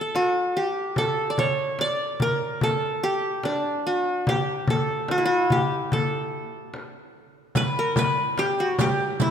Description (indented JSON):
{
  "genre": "Turkish makam ensemble",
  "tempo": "73 BPM",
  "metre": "4/4",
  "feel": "straight",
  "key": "A makam hicaz",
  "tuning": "A4 = 440 Hz",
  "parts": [
    { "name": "qanun", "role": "melody", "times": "0.0-9.3 s", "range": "D4 to D5", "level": "-23 LUFS", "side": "equal", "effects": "none" },
    { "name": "frame drum", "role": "percussion", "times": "0.1-9.3 s", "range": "none", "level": "-27 LUFS", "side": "left 1 dB", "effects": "none" },
    { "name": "riq", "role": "percussion", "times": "7.6-9.3 s", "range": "none", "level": "-31 LUFS", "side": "right 8 dB", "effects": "none" }
  ],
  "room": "moderate concert hall reverb, RT60 2.3 s",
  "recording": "minimal, uncompressed stereo recording",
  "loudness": "-22 LUFS",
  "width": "side -8 dB against mid",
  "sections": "0.0-7.6 A section; 7.6-9.3 B section",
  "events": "none",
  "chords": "none"
}